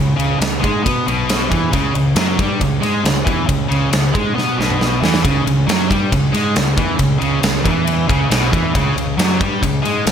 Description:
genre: hard rock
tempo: 137 BPM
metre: 4/4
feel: straight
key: unclear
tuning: A4 = 440 Hz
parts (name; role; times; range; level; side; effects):
- crunchy overdriven guitar; riff; 0.0-10.1 s; Cb3 to Cb4; -19 LUFS; right 7 dB; none
- heavy high-gain guitar; riff; 0.0-10.1 s; Cb3 to Cb4; -20 LUFS; left 7 dB; distortion
- fuzz fingered electric bass; bass; 0.0-10.1 s; Cb2 to Cb3; -22 LUFS; equal; overdrive
- huge arena drum kit; drums; 0.2-10.1 s; kick drum, ride cymbal, snare drum, toms; -18 LUFS; equal; gated reverb
room: moderate plate reverb, RT60 2.3 s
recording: bright 1980s-style digital production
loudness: -14 LUFS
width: side -8 dB against mid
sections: 0.0-10.1 A section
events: drum fill 4.4-5.2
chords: 0.0 Db5

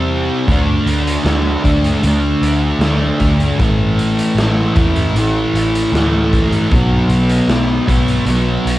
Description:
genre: rock, shoegaze and dream pop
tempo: 77 BPM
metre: 4/4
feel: straight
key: unclear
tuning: A4 = 440 Hz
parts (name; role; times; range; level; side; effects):
- thick fuzz guitar; riff; 0.0-8.8 s; A2 to D4; -15 LUFS; equal; distortion, lush chorus, cassette tape
- vintage muted picked electric bass; bass; 0.0-8.8 s; A1 to E2; -18 LUFS; equal; none
- raw garage drum kit; drums; 0.5-8.8 s; hi-hat, kick drum, snare drum; -19 LUFS; equal; cassette tape
room: light reverb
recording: home recording on cassette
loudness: -12 LUFS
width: side -15 dB against mid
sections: 0.0-8.8 A section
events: none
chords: 0.5 D5; 3.6 A5; 6.7 B5

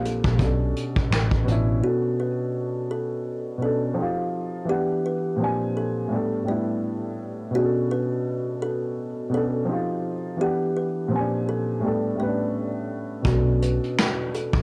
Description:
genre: lo-fi hip hop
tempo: 84 BPM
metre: 4/4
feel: swing 60% on 16ths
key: B minor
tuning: A4 = 442 Hz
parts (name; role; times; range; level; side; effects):
- dark upright piano; accompaniment; 0.0-14.6 s; A2 to G#5; -28 LUFS; equal; cassette tape
- vintage muted picked electric bass; bass; 0.0-1.8, 13.3-14.6 s; A1 to B1; -25 LUFS; equal; none
- kalimba; melody; 0.1-14.6 s; F#4 to D5; -31 LUFS; equal; none
- vintage brush drum kit; drums; 0.1-1.7, 13.2-14.6 s; finger snaps, hi-hat, kick drum, snare drum; -26 LUFS; equal; none
room: moderate small room reverb, RT60 0.5 s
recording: cassette tape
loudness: -25 LUFS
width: mono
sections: 0.0-1.8 A section; 1.8-14.6 B section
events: none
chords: 0.4 Bm9; 1.8 Bm7; 4.0 F5; 4.7 Em7; 5.4 A#9; 6.1 A7sus4; 7.5 Bm7; 9.7 F5; 10.4 Em7; 11.1 A#9; 11.8 A7sus4; 13.2 Bm7

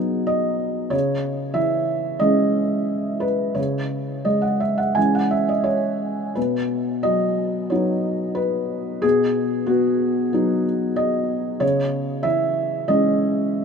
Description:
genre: neoclassical minimalist piano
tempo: 85-96 BPM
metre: 4/4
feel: rubato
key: unclear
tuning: A4 = 439 Hz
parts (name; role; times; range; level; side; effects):
- felt-muted upright piano; solo; 0.0-13.6 s; B2 to G#5; -19 LUFS; equal; none
room: moderate huge ambient reverb, RT60 7.1 s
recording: minimal, uncompressed stereo recording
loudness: -19 LUFS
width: side -6 dB against mid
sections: 0.0-13.6 A section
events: none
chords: 0.0 B; 0.9 C#m; 6.4 B; 11.6 C#m

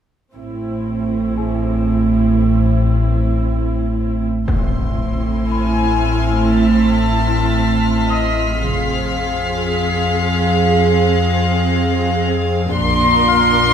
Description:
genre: cinematic, suspense film score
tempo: 58 BPM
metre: 4/4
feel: straight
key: A hungarian minor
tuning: A4 = 445 Hz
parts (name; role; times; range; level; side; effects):
- dark symphonic viola section; accompaniment; 0.3-13.7 s; Bb3 to Ab4; -22 LUFS; right 3 dB; none
- rich symphonic cello section; bass; 0.3-13.7 s; F2 to Bb2; -20 LUFS; right 3 dB; none
- rich symphonic double bass section; bass; 0.3-13.7 s; F1 to Bb1; -22 LUFS; right 1 dB; none
- deep rumbling drone; drone; 1.0-13.7 s; A1 to F2; -20 LUFS; left 2 dB; built-in reverb
- celesta; texture; 1.4-13.7 s; G#4 to F6; -27 LUFS; left 2 dB; none
- impact; sound effects; 4.5-8.6 s; none; -22 LUFS; left 1 dB; none
- warm symphonic violin section; texture; 4.5-13.7 s; Bb5 to B6; -27 LUFS; left 3 dB; none
- warm symphonic violin section; melody; 5.5-13.7 s; D#5 to C6; -19 LUFS; left 3 dB; none
room: wet scoring stage reverb, RT60 1.6 s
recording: minimal, uncompressed stereo recording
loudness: -14 LUFS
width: side -8 dB against mid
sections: 0.3-4.5 A section; 4.5-13.7 B section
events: impact 4.5-8.6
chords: 0.3 Am; 8.6 Fm; 12.8 Bb

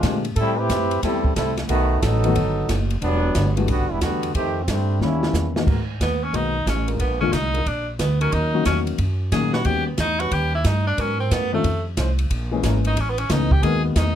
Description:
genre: jazz, big band swing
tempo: 181 BPM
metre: 4/4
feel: swing 65% on 8ths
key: E minor, G# minor from 5.7 s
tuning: A4 = 442 Hz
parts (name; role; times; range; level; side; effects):
- bright trombone section; second line; 0.0-5.5 s; D3 to B4; -23 LUFS; right 1 dB; none
- dark baby grand piano; accompaniment; 0.0-14.2 s; D3 to G#4; -24 LUFS; left 6 dB; none
- upright bass; bass; 0.0-14.2 s; E1 to A#2; -22 LUFS; right 1 dB; none
- open jazz drum kit; drums; 0.0-14.1 s; crash cymbal, hi-hat, kick drum, ride cymbal, snare drum; -26 LUFS; right 1 dB; none
- warm trombone section; sustained chords; 5.7-13.8 s; F3 to C5; -31 LUFS; equal; none
- bright tenor saxophone; melody; 6.0-14.2 s; A3 to G#4; -24 LUFS; right 1 dB; none
room: little or no reverb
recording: close, detailed microphones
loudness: -19 LUFS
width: side -10 dB against mid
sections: 0.0-5.7 A section; 5.7-14.2 B section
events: trombone section solo 0.0-5.7; drum fill 5.0-5.7; tenor saxophone solo 5.7-14.2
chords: 0.4 Am9; 1.7 B7; 3.0 Em9; 4.3 F13; 5.0 D#7b9; 5.7 G#m9; 7.0 A#7; 8.3 D#m7; 9.7 D#7alt; 11.0 G#m11; 11.6 F5; 12.3 A#m7b5; 13.0 Aadd9; 13.6 G#m9

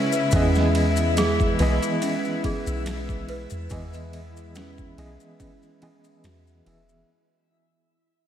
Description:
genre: trip hop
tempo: 71 BPM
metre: 4/4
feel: swing 54% on 16ths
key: unclear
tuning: A4 = 440 Hz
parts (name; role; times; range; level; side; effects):
- overdriven reed electric piano; accompaniment; 0.0-7.1 s; C#3 to E5; -27 LUFS; right 1 dB; fast tremolo, low-pass filter, tape echo
- rich chamber string section; sustained chords; 0.0-7.1 s; G#3 to E4; -29 LUFS; left 1 dB; low-pass filter
- small celesta; arpeggios; 0.0-7.1 s; C#4 to B4; -30 LUFS; right 3 dB; low-pass filter, ping-pong delay
- backwards swelling texture; texture; 0.0-7.1 s; E4 to E5; -32 LUFS; left 2 dB; built-in reverb, lush chorus
- maracas; percussion; 0.1-7.0 s; none; -38 LUFS; left 7 dB; none
- soft 808-style bass; bass; 0.3-7.0 s; E1 to E2; -26 LUFS; equal; none
- boom bap sampler-style drum kit; drums; 0.3-6.9 s; kick drum, ride cymbal, snare drum; -29 LUFS; equal; overdrive, studio ambience
room: wet plate reverb, RT60 2.5 s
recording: dreamy mix soaked in reverb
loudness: -21 LUFS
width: side -10 dB against mid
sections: 0.0-7.1 A section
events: fade-out 0.0-7.1; filter sweep on string section 0.0-7.1; filter sweep on celesta 0.0-7.1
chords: 0.3 Emaj7

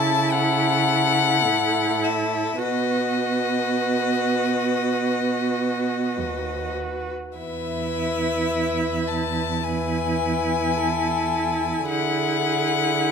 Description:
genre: classical, slow romantic movement for string quartet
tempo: free time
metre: none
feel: none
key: E major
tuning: A4 = 440 Hz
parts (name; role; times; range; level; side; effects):
- clear violin; melody; 0.0-13.1 s; D#5 to A5; -25 LUFS; left 11 dB; none
- warm violin; second line; 0.0-13.1 s; G#4 to B4; -29 LUFS; left 4 dB; none
- rich viola; accompaniment; 0.0-13.1 s; E4 to F#4; -26 LUFS; right 4 dB; none
- warm cello; bass; 0.0-13.1 s; D#2 to D3; -27 LUFS; right 5 dB; none
room: light reverb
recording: close, detailed microphones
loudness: -20 LUFS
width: side -6 dB against mid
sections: 0.0-13.1 A section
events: none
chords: 0.0 A/C#; 2.6 B; 7.4 E; 11.9 E7/D

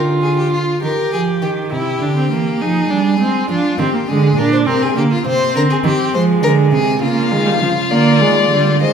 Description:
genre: classical, baroque-style fugue for string quartet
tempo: 68 BPM (dotted quarters)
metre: 6/8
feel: straight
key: unclear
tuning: A4 = 440 Hz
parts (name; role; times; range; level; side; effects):
- clear viola; accompaniment; 0.0-8.9 s; F3 to G4; -17 LUFS; right 2 dB; none
- warm cello; bass; 0.0-8.9 s; Bb2 to Ab3; -17 LUFS; right 3 dB; none
- clear violin; second line; 0.2-8.9 s; F4 to C5; -20 LUFS; left 3 dB; none
- warm violin; melody; 7.0-8.9 s; D5 to F5; -17 LUFS; left 6 dB; none
room: wet recital hall reverb, RT60 1.7 s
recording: recorded in a church or concert hall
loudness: -13 LUFS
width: side -7 dB against mid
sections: 0.0-8.9 A section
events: none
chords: 0.0 Bb/D (rootless); 0.8 Eb; 1.7 C7; 2.6 Fm; 3.5 Ddim; 4.4 Gm/Bb (rootless); 5.3 C5; 6.1 Fm; 7.0 Db; 7.9 Ddim

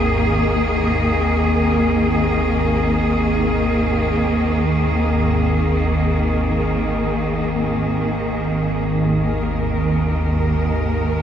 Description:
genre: dark ambient drone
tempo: free time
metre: none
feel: none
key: unclear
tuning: A4 = 440 Hz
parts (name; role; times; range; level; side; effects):
- clear studio cello section; sustained chords; 0.0-11.2 s; D#3 to A#4; -19 LUFS; equal; none
- organ-like drone; drone; 0.0-11.2 s; G#1 to D#2; -19 LUFS; equal; ensemble chorus, built-in reverb
room: wet cathedral reverb, RT60 5.7 s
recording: none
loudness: -16 LUFS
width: side -9 dB against mid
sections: 0.0-11.2 A section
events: none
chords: 0.0 G#sus2

